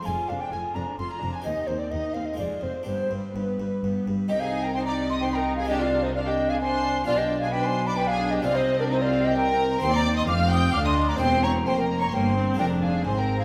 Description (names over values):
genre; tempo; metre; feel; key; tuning
classical, baroque-style concerto movement with solo episodes; 130 BPM; 3/4; straight; C minor; A4 = 440 Hz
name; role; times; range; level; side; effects
clear studio violin section; melody; 0.0-13.4 s; Eb4 to G6; -38 LUFS; equal; none
hollow concert flute; melody; 0.0-13.4 s; Bb4 to Eb6; -29 LUFS; equal; none
harpsichord; accompaniment; 0.0-13.4 s; D2 to D5; -36 LUFS; equal; none
rich chamber viola section; accompaniment; 0.0-13.4 s; G3 to F4; -34 LUFS; equal; none
rich chamber violin section; second line; 0.1-13.4 s; D4 to C6; -34 LUFS; equal; none
warm chamber cello section; bass; 0.1-13.4 s; D2 to C3; -32 LUFS; equal; none
warm studio double bass section; bass; 0.1-13.4 s; E1 to Eb2; -33 LUFS; equal; none
room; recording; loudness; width
wet recital hall reverb, RT60 1.5 s; none; -25 LUFS; mono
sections
0.0-4.3 A section; 4.3-13.4 B section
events
none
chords
0.1 Ddim/F; 1.5 Cm/Eb; 2.4 Fm; 2.9 G; 4.3 Cm; 5.7 Dm7b5/C; 7.1 G/B; 8.4 C5; 9.8 Cm; 11.2 C7/E; 12.6 Fm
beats
| 0.07 0.53 0.99 | 1.46 1.92 2.39 | 2.86 3.34 3.82 | 4.29 4.76 5.22 | 5.69 6.15 6.61 | 7.07 7.53 7.99 | 8.45 8.91 9.37 | 9.82 10.28 10.74 | 11.21 11.67 12.13 | 12.60 13.06